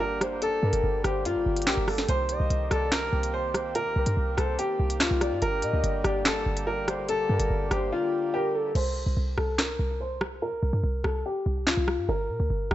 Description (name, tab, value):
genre	hip hop, drill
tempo	144 BPM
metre	4/4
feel	half-time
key	unclear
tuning	A4 = 438 Hz
part	clear upright piano	melody	0.0-12.7 s	F4 to C5	-29 LUFS	left 2 dB	low-pass filter, tape echo
part	hand-pumped harmonium	sustained chords	0.0-8.7 s	D3 to G4	-35 LUFS	right 2 dB	none
part	short 808-style bass	bass	0.0-12.7 s	G1 to C3	-28 LUFS	equal	none
part	gliding portamento lead	second line	0.2-8.7 s	A4 to Eb5	-34 LUFS	equal	chorus, phaser, tape echo
part	drill drum kit	drums	0.2-12.7 s	crash cymbal, handclaps, hi-hat, rim click, snare drum	-29 LUFS	equal	none
room	light reverb, digital ambience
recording	dark, warm production, nothing above 7.9 kHz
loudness	-24 LUFS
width	side -13 dB against mid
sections	0.0-8.8 A section; 8.8-12.7 B section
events	drums muted 7.9-8.8; hi-hats muted 8.8-12.7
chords	0.0 Gmadd9; 2.1 Cm7; 5.4 Gmadd9; 8.8 C5; 12.1 Gm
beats	0.00 | 0.42 0.84 1.25 1.67 | 2.09 2.50 2.92 3.34 | 3.75 4.17 4.59 5.00 | 5.42 5.84 6.25 6.67 | 7.09 7.50 7.92 8.34 | 8.75 9.17 9.59 10.00 | 10.42 10.84 11.25 11.67 | 12.09 12.50